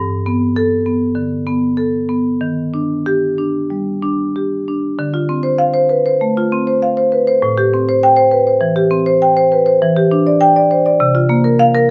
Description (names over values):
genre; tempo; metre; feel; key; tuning
classical, contemporary piece for solo marimba; 92-102 BPM; 4/4; rubato; D dorian; A4 = 441 Hz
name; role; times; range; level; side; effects
marimba with medium hard mallets; solo; 0.0-11.9 s; G2 to G5; -15 LUFS; equal; none
room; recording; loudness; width
light reverb; none; -15 LUFS; mono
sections
0.0-5.0 A section; 5.0-11.9 B section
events
none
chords
0.0 Gadd9; 2.4 Ebmaj7; 5.0 Dm7; 7.4 Am9; 9.8 Em7; 11.0 C7sus4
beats
0.55 1.15 1.76 | 2.41 3.05 3.70 4.35 | 4.98 5.59 6.21 6.82 | 7.42 8.02 8.62 9.22 | 9.82 10.41 11.01 11.60